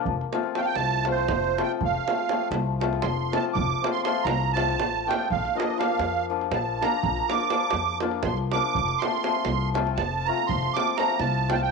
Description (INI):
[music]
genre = balkan folk, Balkan wedding band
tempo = 241 BPM (eighths)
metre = 7/8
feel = straight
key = F major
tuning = A4 = 439 Hz
[part]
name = hammered dulcimer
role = accompaniment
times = 0.0-11.7 s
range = F3 to F4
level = -28 LUFS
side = left 15 dB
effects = none
[part]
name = upright bass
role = bass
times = 0.1-11.7 s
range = F1 to F2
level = -30 LUFS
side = left 2 dB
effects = none
[part]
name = davul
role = percussion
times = 0.1-11.7 s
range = none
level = -31 LUFS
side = right 8 dB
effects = none
[part]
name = musette accordion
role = second line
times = 0.6-11.7 s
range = C5 to D6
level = -26 LUFS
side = right 13 dB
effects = none
[sound]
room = light reverb, studio reverb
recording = 1960s-style stereo with parts hard left and right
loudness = -23 LUFS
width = side -4 dB against mid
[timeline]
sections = 0.0-11.7 A section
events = accordion solo 0.0-11.7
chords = 0.1 F; 5.3 Bb; 8.8 F